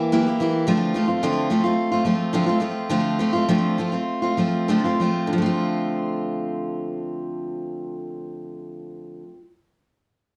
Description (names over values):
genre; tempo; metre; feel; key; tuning
pop; 93-110 BPM; 4/4; straight; D minor; A4 = 440 Hz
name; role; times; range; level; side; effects
picked steel-string acoustic guitar; solo; 0.0-9.4 s; D3 to G4; -23 LUFS; equal; slapback echo
room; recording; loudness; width
light reverb; worn, warbling old tape, cassette tape, warbly pitch drift; -23 LUFS; mono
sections
0.0-5.3 A section; 5.3-10.4 B section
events
slowing down 0.7-5.3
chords
0.0 Edim; 0.7 Dm7